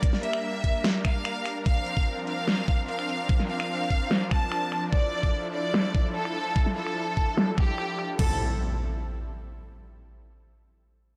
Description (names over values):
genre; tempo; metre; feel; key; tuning
heavy wobble dubstep; 147 BPM; 4/4; half-time; A phrygian; A4 = 440 Hz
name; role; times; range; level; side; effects
rich studio violin section; melody; 0.0-8.3 s; G4 to A5; -33 LUFS; equal; tape echo
supersaw pad; sustained chords; 0.0-8.4 s; F3 to Bb4; -36 LUFS; equal; sidechain pumping
dubstep drum kit; drums; 0.0-8.3 s; crash cymbal, finger snaps, hi-hat, snare drum; -31 LUFS; equal; low-pass filter on hats, studio reverb, low-pass filter on cymbals, low-pass filter on snare
electronic kick drum; drums; 0.0-8.3 s; none; -27 LUFS; equal; studio reverb
impact; sound effects; 8.2-9.8 s; none; -34 LUFS; equal; none
room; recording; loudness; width
light reverb, digital ambience; none; -27 LUFS; mono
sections
0.0-8.2 A section; 8.2-9.8 B section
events
filter sweep on drum 0.0-8.2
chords
0.0 Gm; 1.7 Bbadd9; 4.9 Dmadd9; 8.2 Am7